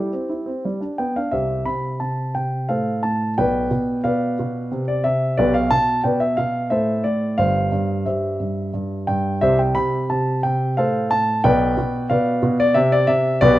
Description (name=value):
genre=classical-period piano sonatina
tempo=89 BPM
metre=3/4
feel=straight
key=C major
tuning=A4 = 438 Hz
part: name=dark grand piano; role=solo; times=0.0-13.6 s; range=G1 to B5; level=-18 LUFS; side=equal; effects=none
room=light reverb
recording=close, detailed microphones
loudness=-18 LUFS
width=side -15 dB against mid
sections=0.0-1.3 A section; 1.3-13.6 B section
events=none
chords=0.0 C/G; 0.7 G; 1.3 C5; 2.7 F/A; 3.4 G7/B; 4.7 C; 5.4 G/B; 6.7 Am; 7.4 C/G; 8.7 N.C.; 9.4 C5; 10.8 F/A; 11.4 G/B; 12.8 N.C.